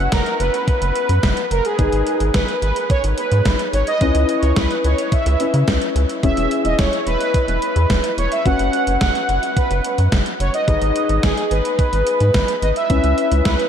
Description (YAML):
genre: synth-pop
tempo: 108 BPM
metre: 4/4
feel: straight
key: C# minor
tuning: A4 = 440 Hz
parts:
  - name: analog synth brass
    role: melody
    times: 0.0-13.7 s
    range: G#4 to F#5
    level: -20 LUFS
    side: right 1 dB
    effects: chorus, analog delay
  - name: dark grand piano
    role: accompaniment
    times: 0.0-13.7 s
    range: C#4 to B4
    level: -24 LUFS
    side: left 4 dB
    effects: wide subtle chorus
  - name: rubbery square bass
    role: bass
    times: 0.0-13.6 s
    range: E1 to C#3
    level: -19 LUFS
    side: equal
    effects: none
  - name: gated 80s digital drum machine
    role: drums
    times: 0.1-13.7 s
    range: hi-hat, kick drum, snare drum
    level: -22 LUFS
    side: equal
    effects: gated reverb, gated reverb snare
room: moderate huge ambient reverb, RT60 8.5 s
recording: dreamy mix soaked in reverb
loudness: -15 LUFS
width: side -8 dB against mid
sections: 0.0-13.7 A section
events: none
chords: 0.0 F#sus4; 1.8 G#m; 4.0 C#m7; 6.2 E6; 8.5 F#sus4; 10.7 G#m; 12.9 C#m7